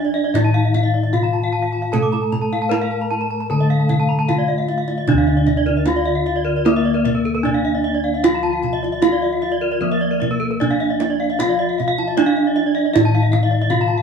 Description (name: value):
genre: Balinese gamelan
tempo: 76 BPM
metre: 4/4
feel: straight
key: D pelog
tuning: A4 = 440 Hz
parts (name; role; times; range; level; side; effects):
- gamelan-type bronze metallophone; melody; 0.0-14.0 s; Bb3 to Bb4; -21 LUFS; equal; none
- gamelan-type bronze metallophone; accompaniment; 0.0-14.0 s; D3 to Bb3; -27 LUFS; left 1 dB; none
- gamelan-type bronze metallophone; arpeggios; 0.0-13.9 s; Bb4 to D6; -25 LUFS; right 5 dB; none
- gamelan-type bossed gongs; bass; 0.0-14.0 s; D2 to A4; -21 LUFS; left 1 dB; none
- gamelan-type bronze metallophone; arpeggios; 0.1-14.0 s; A4 to Bb5; -25 LUFS; left 5 dB; none
- kendang; percussion; 0.4-13.9 s; none; -22 LUFS; right 6 dB; none
room: wet large studio reverb, RT60 0.9 s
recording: band playing live in one room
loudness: -16 LUFS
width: side -6 dB against mid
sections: 0.0-5.1 A section; 5.1-14.0 A section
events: none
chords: none